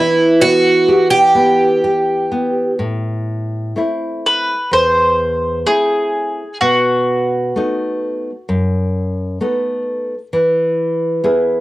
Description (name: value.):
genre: fado-style ballad.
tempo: 64 BPM.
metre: 4/4.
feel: rubato.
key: unclear.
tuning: A4 = 441 Hz.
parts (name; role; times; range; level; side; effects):
mandolin; melody; 0.0-9.8 s; F#4 to E5; -16 LUFS; equal; cassette tape.
picked twelve-string acoustic guitar; second line; 0.0-2.8 s; E4 to G4; -12 LUFS; right 2 dB; cassette tape.
nylon-string guitar; accompaniment; 0.0-11.6 s; E2 to B4; -16 LUFS; equal; cassette tape.
room: light reverb, small room ambience.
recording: home recording on cassette.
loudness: -13 LUFS.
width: side -17 dB against mid.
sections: 0.0-2.8 A section; 2.8-11.6 B section.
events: none.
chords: 0.0 Em; 2.8 Am; 6.6 B7; 10.3 E.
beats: 0.87 1.82 | 2.79 3.75 4.71 5.66 | 6.61 7.55 8.48 9.40 | 10.32 11.23.